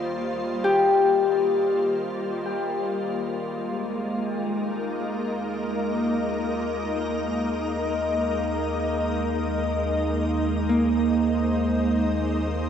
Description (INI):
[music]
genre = ambient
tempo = free time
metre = none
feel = none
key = Eb major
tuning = A4 = 441 Hz
[part]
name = soft additive organ-like pad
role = sustained chords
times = 0.0-12.7 s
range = Eb2 to Eb5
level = -25 LUFS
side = left 1 dB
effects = ensemble chorus, built-in reverb, cassette tape, shimmer reverb
[part]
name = Celtic harp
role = arpeggios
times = 0.6-12.7 s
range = Bb3 to G4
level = -23 LUFS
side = left 1 dB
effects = cassette tape, analog delay, shimmer reverb
[part]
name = deep rumbling drone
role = bass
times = 3.1-12.7 s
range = Eb2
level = -31 LUFS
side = equal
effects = built-in reverb
[sound]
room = wet lush hall reverb, RT60 2.7 s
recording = home recording on cassette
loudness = -22 LUFS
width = side -8 dB against mid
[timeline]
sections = 0.0-3.1 A section; 3.1-12.7 B section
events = none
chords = 0.0 Cm/Eb; 3.1 Ebsus4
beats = free time